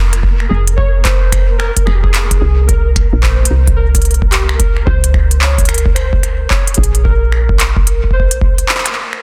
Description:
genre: IDM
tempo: 110 BPM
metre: 4/4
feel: swing 62% on 16ths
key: unclear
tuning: A4 = 439 Hz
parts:
  - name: warbly lo-fi synth keys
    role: melody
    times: 0.0-8.9 s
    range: F4 to Db5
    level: -25 LUFS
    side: equal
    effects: chorus, tape echo
  - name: woody FM bass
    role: bass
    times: 0.0-8.6 s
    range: F1 to Db2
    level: -16 LUFS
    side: equal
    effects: tube saturation
  - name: flickering grainy texture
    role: texture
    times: 0.0-9.2 s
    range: Bb4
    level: -33 LUFS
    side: equal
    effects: built-in reverb, sidechain pumping
  - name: industrial drum kit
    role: drums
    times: 0.1-9.2 s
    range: finger snaps, handclaps, hi-hat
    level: -20 LUFS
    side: equal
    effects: none
  - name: electronic kick drum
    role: drums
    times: 0.2-8.6 s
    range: none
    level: -16 LUFS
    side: equal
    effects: overdrive
room: little or no reverb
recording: dense, heavily limited modern master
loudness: -12 LUFS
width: mono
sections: 0.0-9.2 A section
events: break 8.7-9.2; band accent 8.7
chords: 0.0 Bb5; 0.5 F5; 2.7 Bbsus2; 4.9 Bbmadd9; 7.1 N.C.; 8.1 Bbsus2

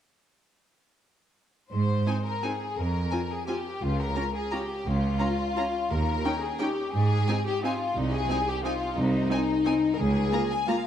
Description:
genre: classical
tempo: 174 BPM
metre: 3/4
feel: uneven beats, rubato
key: Ab major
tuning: A4 = 440 Hz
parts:
  - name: clear studio violin section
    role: second line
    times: 1.7-10.9 s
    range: Eb4 to Ab5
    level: -29 LUFS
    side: left 4 dB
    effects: none
  - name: bright symphonic cello section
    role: bass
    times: 1.7-10.3 s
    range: C2 to Ab2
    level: -28 LUFS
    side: right 2 dB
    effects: none
  - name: clear chamber violin section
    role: melody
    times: 2.1-10.8 s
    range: G5 to Bb5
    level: -38 LUFS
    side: left 1 dB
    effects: none
  - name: clear studio viola section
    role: accompaniment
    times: 2.1-10.8 s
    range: Bb3 to F4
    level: -33 LUFS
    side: right 1 dB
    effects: none
room: moderate scoring stage reverb, RT60 1.5 s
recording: dark, warm production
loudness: -25 LUFS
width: side -10 dB against mid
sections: 1.7-10.9 A section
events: none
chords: 1.7 Ab; 2.8 Fm; 3.8 Bbm/Db; 5.9 Eb7; 6.9 Ab; 8.0 Ab/C; 10.0 Bbm7/Db

